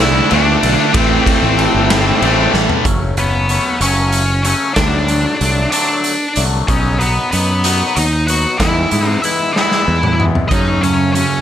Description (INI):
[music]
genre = quiet-loud alternative rock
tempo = 63 BPM (dotted quarters)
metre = 6/8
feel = straight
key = unclear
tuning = A4 = 440 Hz
[part]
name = octave-fuzz lead guitar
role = melody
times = 0.0-11.4 s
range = B3 to F#5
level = -17 LUFS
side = left 1 dB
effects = distortion
[part]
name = biting overdriven guitar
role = riff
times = 0.0-2.8 s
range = A2 to D4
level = -19 LUFS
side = equal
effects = none
[part]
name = distorted electric guitar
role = riff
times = 0.0-2.8 s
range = A2 to D4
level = -19 LUFS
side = left 14 dB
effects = overdrive
[part]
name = thick fuzz guitar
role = riff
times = 0.0-2.9, 10.5-11.4 s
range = F#2 to D4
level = -20 LUFS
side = right 12 dB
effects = distortion
[part]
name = growling fingered electric bass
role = bass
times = 0.0-11.2 s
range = F#1 to G#2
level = -17 LUFS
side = equal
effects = overdrive
[part]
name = raw garage drum kit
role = drums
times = 0.3-11.3 s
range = hi-hat, kick drum, ride cymbal, snare drum, toms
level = -18 LUFS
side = equal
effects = none
[part]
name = twangy electric guitar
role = arpeggios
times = 2.8-11.4 s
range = B2 to E4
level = -21 LUFS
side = left 5 dB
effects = phaser
[sound]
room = little or no reverb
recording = none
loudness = -12 LUFS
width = side -10 dB against mid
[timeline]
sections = 0.0-2.8 A section; 2.8-11.4 B section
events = drum fill 2.5-2.8, 9.6-10.5; half time 2.8-11.4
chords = 0.0 D5; 0.9 Am; 2.8 F#m; 4.8 D; 6.7 B; 8.6 E; 10.5 F#m